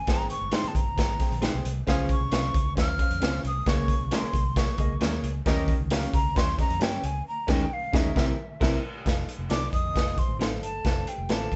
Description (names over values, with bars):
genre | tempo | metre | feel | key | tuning
uptempo 1960s-style soul | 134 BPM | 4/4 | straight | Eb mixolydian | A4 = 439 Hz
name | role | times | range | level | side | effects
breathy hollow jazz flute | melody | 0.0-11.6 s | Fb5 to F6 | -34 LUFS | equal | none
clear baby grand piano | accompaniment | 0.1-11.5 s | Ab2 to G5 | -37 LUFS | equal | none
vintage muted fingered electric bass | bass | 0.1-11.6 s | F1 to G2 | -34 LUFS | equal | none
raw garage drum kit | drums | 0.1-11.6 s | crash cymbal, hi-hat, kick drum, snare drum | -29 LUFS | equal | none
electric guitar through a small old amp | stabs | 0.5-11.4 s | F3 to C5 | -34 LUFS | equal | none
mellow horn section | second line | 1.9-2.2, 5.5-5.8 s | F3 to Bb4 | -37 LUFS | equal | none
vibraphone with soft mallets | second line | 9.5-11.6 s | A4 to Eb5 | -42 LUFS | equal | none
room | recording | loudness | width
little or no reverb | band playing live in one room, nothing above 8.0 kHz | -26 LUFS | mono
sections
0.0-9.1 A section; 9.1-11.6 B section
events
band accent 7.3-9.1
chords
0.1 Abmaj7; 1.9 Dbmaj7; 3.7 Bbm7; 5.5 Eb7; 7.3 Eb7sus4; 8.2 C7; 9.1 F7; 10.8 Dm7/F